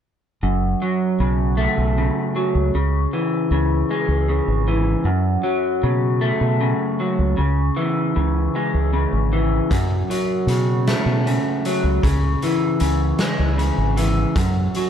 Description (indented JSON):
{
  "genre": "psychedelic rock",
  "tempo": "52 BPM (dotted quarters)",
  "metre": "6/8",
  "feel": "straight",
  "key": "F# minor",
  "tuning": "A4 = 440 Hz",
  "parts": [
    { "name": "electric guitar through a small old amp", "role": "riff", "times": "0.4-14.9 s", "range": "F#2 to A3", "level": "-20 LUFS", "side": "equal", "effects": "flanger" },
    { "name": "deep dub fingered electric bass", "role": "bass", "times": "0.4-14.7 s", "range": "F#1 to B2", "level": "-20 LUFS", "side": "equal", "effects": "none" },
    { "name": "raw garage drum kit", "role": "drums", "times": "9.7-14.9 s", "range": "hi-hat, kick drum, snare drum", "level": "-26 LUFS", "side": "equal", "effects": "none" }
  ],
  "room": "light reverb",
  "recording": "none",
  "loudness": "-17 LUFS",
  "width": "side -8 dB against mid",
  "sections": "0.4-14.9 A section",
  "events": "none",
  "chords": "0.4 F#m; 2.7 C#m; 5.1 F#m; 7.4 C#m; 9.7 F#m; 12.0 C#m; 14.4 N.C."
}